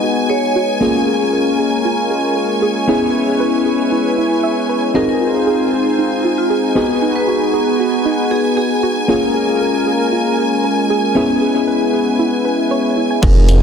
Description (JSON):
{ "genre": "deep house", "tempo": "116 BPM", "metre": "4/4", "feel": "swing 53% on 16ths", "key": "unclear", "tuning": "A4 = 440 Hz", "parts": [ { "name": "warm analog pad", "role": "sustained chords", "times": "0.0-13.6 s", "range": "Ab3 to Eb5", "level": "-21 LUFS", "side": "right 1 dB", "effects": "chorus, sidechain pumping" }, { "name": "soft round pluck", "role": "arpeggios", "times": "0.0-13.2 s", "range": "Eb4 to Ab5", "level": "-22 LUFS", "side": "right 4 dB", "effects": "chorus, cassette tape, sidechain pumping, ping-pong delay" }, { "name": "mellow FM electric piano", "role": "stabs", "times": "0.0-13.6 s", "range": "Bb3 to Ab4", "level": "-17 LUFS", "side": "left 2 dB", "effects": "chorus, sidechain pumping, ping-pong delay" }, { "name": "rich studio violin section", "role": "texture", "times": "0.0-13.6 s", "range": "Ab5", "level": "-23 LUFS", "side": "right 1 dB", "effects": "sidechain pumping" }, { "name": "warbly tape-like pad", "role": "texture", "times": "0.0-13.6 s", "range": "Cb4 to Ab5", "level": "-23 LUFS", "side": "equal", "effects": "chorus, built-in reverb, sidechain pumping" }, { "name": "vibraphone with medium hard mallets", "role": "melody", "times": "0.3-0.7, 5.0-9.1, 13.2-13.4 s", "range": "F4 to Db5", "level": "-24 LUFS", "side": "equal", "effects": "ping-pong delay" }, { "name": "round analog bass", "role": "bass", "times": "13.2-13.6 s", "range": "F1", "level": "-11 LUFS", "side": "equal", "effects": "sidechain pumping" }, { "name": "electronic kick drum", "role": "drums", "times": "13.2-13.3 s", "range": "none", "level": "-12 LUFS", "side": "equal", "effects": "none" }, { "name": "punchy analog drum machine", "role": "drums", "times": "13.2-13.6 s", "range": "crash cymbal, hi-hat", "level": "-24 LUFS", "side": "equal", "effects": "low-pass filter on hats, low-pass filter on cymbals, low-pass filter on room" }, { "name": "congas", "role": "percussion", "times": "13.4-13.5 s", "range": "none", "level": "-28 LUFS", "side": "left 5 dB", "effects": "none" } ], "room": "moderate lush hall reverb, RT60 2.5 s", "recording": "dense, heavily limited modern master", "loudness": "-13 LUFS", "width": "side -7 dB against mid", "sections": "0.0-13.2 A section", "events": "filter sweep on synth arpeggio sound 0.0-13.2", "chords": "0.0 Abm7; 0.8 Bbm7; 2.9 Dbm7; 5.0 Fm7; 6.8 Abm7; 9.1 Bbm7; 11.2 Dbm7" }